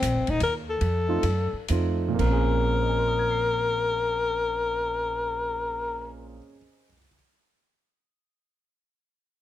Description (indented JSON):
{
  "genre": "jazz, small-group swing and bop",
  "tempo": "113-159 BPM",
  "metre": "3/4",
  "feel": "swing 65% on 8ths",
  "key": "Bb minor",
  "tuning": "A4 = 440 Hz",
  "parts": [
    { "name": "breathy alto saxophone", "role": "melody", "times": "0.0-6.1 s", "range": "C4 to Bb4", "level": "-26 LUFS", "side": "left 3 dB", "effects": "none" },
    { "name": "upright bass", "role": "bass", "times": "0.0-6.4 s", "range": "Eb1 to Gb2", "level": "-28 LUFS", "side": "equal", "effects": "none" },
    { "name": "open jazz drum kit", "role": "drums", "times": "0.0-2.4 s", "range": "crash cymbal, hi-hat, kick drum, ride cymbal", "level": "-37 LUFS", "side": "left 1 dB", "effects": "none" },
    { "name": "warm grand piano", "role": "accompaniment", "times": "1.1-7.1 s", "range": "Bb2 to C7", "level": "-31 LUFS", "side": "right 5 dB", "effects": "none" }
  ],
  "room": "little or no reverb",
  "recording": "close, detailed microphones",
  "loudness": "-23 LUFS",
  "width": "side -12 dB against mid",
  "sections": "0.0-2.2 A section; 2.2-5.4 B section",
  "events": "slowing down 0.0-2.2",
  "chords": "0.0 Cm7b5; 0.8 F7; 2.2 Bbm9"
}